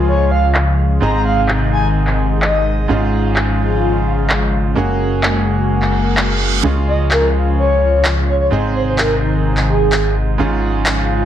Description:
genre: EDM, festival progressive house.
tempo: 128 BPM.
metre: 4/4.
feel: straight.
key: Db major.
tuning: A4 = 440 Hz.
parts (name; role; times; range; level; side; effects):
bright grand piano; accompaniment; 0.0-11.3 s; Ab2 to Ab4; -20 LUFS; right 3 dB; tape echo.
lush unison pad; sustained chords; 0.0-11.3 s; C3 to Gb4; -20 LUFS; left 2 dB; chorus, phaser.
fat analog bass; bass; 0.0-11.3 s; Gb1 to Db2; -18 LUFS; equal; none.
breathy flute-like synth lead; melody; 0.1-2.9, 6.9-10.2 s; Ab4 to Bb5; -19 LUFS; equal; lush chorus, dub echo.
electronic handclaps; drums; 0.5-11.0 s; none; -20 LUFS; equal; overdrive, low-pass filter on snare, low-pass filter on room.
reverse cymbal; sound effects; 5.9-6.6 s; none; -22 LUFS; right 6 dB; none.
room: moderate digital room reverb, RT60 1.2 s.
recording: none.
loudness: -13 LUFS.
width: side -10 dB against mid.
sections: 0.0-11.3 A section.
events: reverse cymbal 5.9-6.6.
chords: 0.0 Db; 1.0 Ab; 2.9 Db/Ab; 4.8 Gbadd9; 6.6 Db; 8.5 Ab; 10.4 Db/Ab.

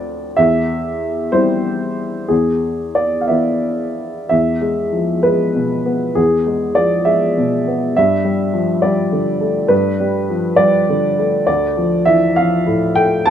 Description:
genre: neoclassical minimalist piano.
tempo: 58-69 BPM (dotted quarters).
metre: 6/8.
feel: rubato.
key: unclear.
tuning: A4 = 438 Hz.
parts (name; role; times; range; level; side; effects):
warm upright piano; solo; 0.0-13.3 s; D2 to A5; -14 LUFS; equal; none.
room: moderate studio reverb, RT60 0.5 s.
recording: band playing live in one room.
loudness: -14 LUFS.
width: side -9 dB against mid.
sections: 0.0-4.3 A section; 4.3-13.3 B section.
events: none.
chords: 0.4 C/E; 2.3 E; 8.0 Gadd9; 11.5 Dm.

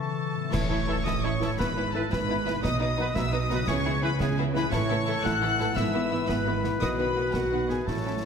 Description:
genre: cinematic, heroic adventure film score.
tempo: 114 BPM (dotted quarters).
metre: 6/8.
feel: straight.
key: A lydian.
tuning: A4 = 441 Hz.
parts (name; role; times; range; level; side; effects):
rich studio violin section; melody; 0.0-8.3 s; F#5 to F#6; -34 LUFS; left 4 dB; none.
clear clarinet; second line; 0.0-8.3 s; F#4 to F#5; -35 LUFS; left 1 dB; none.
warm oboe; second line; 0.0-8.3 s; F#4 to F#5; -36 LUFS; equal; none.
concert harp; arpeggios; 0.0-8.3 s; G#2 to A4; -36 LUFS; left 7 dB; none.
rich chamber violin section; second line; 0.5-8.3 s; B3 to B4; -36 LUFS; left 1 dB; none.
warm symphonic viola section; accompaniment; 0.5-8.1 s; D#3 to E4; -34 LUFS; right 1 dB; none.
rich symphonic cello section; bass; 0.5-8.3 s; G#2 to C#3; -33 LUFS; right 5 dB; none.
rich symphonic double bass section; bass; 0.5-8.3 s; G#1 to C#2; -34 LUFS; right 5 dB; none.
concert snare drum, clash cymbals and concert bass drum; drums; 0.5-8.3 s; none; -34 LUFS; equal; none.
clash cymbals and concert bass drum; percussion; 0.5-1.2 s; none; -35 LUFS; equal; none.
timpani; percussion; 0.5-1.0, 7.9-8.2 s; A2; -39 LUFS; left 1 dB; none.
mellow French horn section; sustained chords; 0.9-8.3 s; D#3 to F#4; -34 LUFS; left 4 dB; none.
mellow trumpet section; stabs; 0.9-8.3 s; A4 to C#5; -35 LUFS; left 1 dB; none.
room: moderate concert hall reverb, RT60 2.2 s.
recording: none.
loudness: -24 LUFS.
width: side -6 dB against mid.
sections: 0.5-8.3 A section.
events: band accent 0.5-0.9; timpani fill 7.9-8.3.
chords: 0.0 C#m7; 0.5 A; 1.6 E/G#; 2.6 B; 3.7 C#m7; 4.7 A; 5.8 E/G#; 6.8 B.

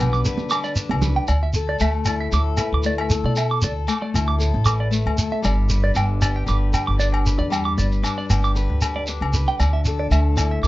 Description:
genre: highlife guitar band.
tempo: 116 BPM.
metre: 4/4.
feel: straight.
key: unclear.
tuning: A4 = 437 Hz.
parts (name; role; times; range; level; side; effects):
electric guitar at the edge of break-up; melody; 0.0-0.7 s; none; barely audible; none; none.
breathy alto saxophone; second line; 0.0-0.7 s; B3; -29 LUFS; left 4 dB; none.
picked steel-string acoustic guitar; accompaniment; 0.0-10.7 s; A2 to B4; -27 LUFS; left 5 dB; none.
clean electric guitar; arpeggios; 0.0-10.7 s; D5 to D6; -26 LUFS; right 4 dB; phaser.
upright bass; bass; 0.0-10.7 s; G1 to B2; -20 LUFS; equal; none.
shekere; percussion; 0.0-10.7 s; none; -24 LUFS; right 1 dB; none.
congas; percussion; 0.4-1.1 s; none; -26 LUFS; right 5 dB; none.
agogo bells; percussion; 0.5-10.5 s; none; -29 LUFS; left 5 dB; none.
room: light reverb.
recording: nothing above 7.6 kHz.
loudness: -18 LUFS.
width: side -17 dB against mid.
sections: 0.0-1.3 A section; 1.3-10.7 B section.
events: none.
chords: 0.0 G; 1.3 Dsus2; 5.4 G; 9.6 Dsus2.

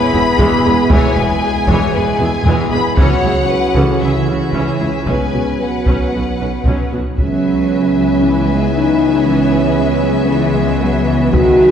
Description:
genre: cinematic, epic orchestral film score.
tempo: 116 BPM.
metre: 4/4.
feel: straight.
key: C# minor.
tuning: A4 = 439 Hz.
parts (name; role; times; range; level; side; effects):
warm symphonic violin section; melody; 0.0-11.7 s; E5 to B5; -22 LUFS; left 4 dB; none.
rich symphonic violin section; second line; 0.0-11.7 s; F#4 to E5; -24 LUFS; left 3 dB; none.
dark French horn section; sustained chords; 0.0-11.7 s; E3 to F#4; -17 LUFS; equal; none.
warm woodwind section; sustained chords; 0.0-11.7 s; E3 to E5; -22 LUFS; right 1 dB; none.
rich symphonic viola section; accompaniment; 0.1-11.7 s; E3 to B4; -23 LUFS; equal; none.
mellow tuba; bass; 0.1-11.7 s; E1 to C#2; -22 LUFS; equal; none.
rich chamber cello section; bass; 0.1-11.7 s; E2 to G#3; -22 LUFS; right 2 dB; none.
rich symphonic double bass section; bass; 0.1-11.7 s; E1 to C#2; -22 LUFS; right 1 dB; none.
taiko ensemble; drums; 0.4-8.2, 11.3-11.7 s; none; -19 LUFS; equal; none.
room: wet concert hall reverb, RT60 2.4 s.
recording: heard from further back in the room.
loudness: -12 LUFS.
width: side -8 dB against mid.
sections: 0.0-7.2 A section; 7.2-11.7 B section.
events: none.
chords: 0.0 E; 3.0 C#m; 5.1 Bsus2; 7.2 C#m7.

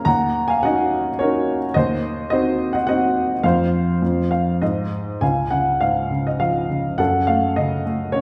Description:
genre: classical, lyrical solo piano.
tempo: 97-109 BPM.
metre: 3/4.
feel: rubato.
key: unclear.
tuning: A4 = 440 Hz.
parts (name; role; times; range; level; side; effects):
dark grand piano; solo; 0.0-8.2 s; Db2 to Bb5; -20 LUFS; equal; none.
room: wet recital hall reverb, RT60 1.4 s.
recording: recorded in a church or concert hall.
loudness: -20 LUFS.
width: mono.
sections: 0.0-5.2 A section; 5.2-8.2 B section.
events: grand piano fill 4.0-5.2.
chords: 0.1 Ebm7; 1.8 Cdim/Eb; 3.4 F5; 4.6 Ab; 5.2 Db; 7.0 Gbm.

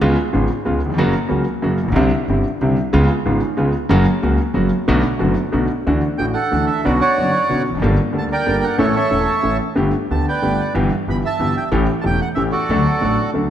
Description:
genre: tango.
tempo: 185 BPM.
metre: 3/4.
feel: rubato.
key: D major from 5.9 s.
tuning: A4 = 441 Hz.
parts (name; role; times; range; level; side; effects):
clear concert grand piano; accompaniment; 0.0-13.5 s; E1 to A4; -17 LUFS; left 1 dB; none.
upright bass; bass; 0.0-13.5 s; E1 to D2; -22 LUFS; right 1 dB; none.
bandoneon; melody; 6.2-13.3 s; F#4 to B5; -20 LUFS; right 3 dB; none.
room: moderate concert hall reverb, RT60 1.8 s.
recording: none.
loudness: -15 LUFS.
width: side -10 dB against mid.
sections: 0.0-5.9 A section; 5.9-13.5 B section.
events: none.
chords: 0.0 C#7; 1.0 F#; 2.0 Cadd9; 2.9 C#7; 3.9 F#; 4.9 Bm7; 5.9 Dadd9; 6.9 Bmadd9; 7.8 Gmadd9; 8.8 A; 9.8 Gadd9; 10.8 Em/G; 11.7 A7; 12.7 D.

